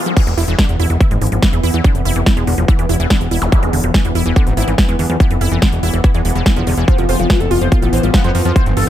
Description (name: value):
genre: psychedelic trance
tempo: 143 BPM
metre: 4/4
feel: straight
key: E phrygian dominant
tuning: A4 = 441 Hz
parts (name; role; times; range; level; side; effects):
- pulsing gated texture; sustained chords; 0.0-8.9 s; E3 to B3; -22 LUFS; left 1 dB; chorus, built-in reverb, sidechain pumping
- wide unison pluck; riff; 0.1-8.8 s; D3 to F4; -22 LUFS; right 1 dB; auto-pan, sidechain pumping, dub echo
- big-room dance drum kit; drums; 0.1-8.9 s; crash cymbal, hi-hat, snare drum; -22 LUFS; equal; overdrive
- electronic kick drum; drums; 0.2-8.6 s; none; -14 LUFS; equal; overdrive
- fat analog bass; bass; 0.3-8.8 s; E1 to F2; -16 LUFS; equal; none
- zap; sound effects; 3.4-3.5 s; none; -24 LUFS; equal; none
- overdriven synth lead; melody; 6.9-8.8 s; C4 to C5; -20 LUFS; left 1 dB; distortion, chorus, phaser, sidechain pumping, tape echo
- metallic wobble bass; second line; 8.1-8.3 s; B3; -30 LUFS; left 2 dB; none
room: digital ambience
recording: none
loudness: -12 LUFS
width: side -12 dB against mid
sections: 0.2-8.9 A section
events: break 0.0; drop 0.2-8.9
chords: 0.2 E5; 6.9 F5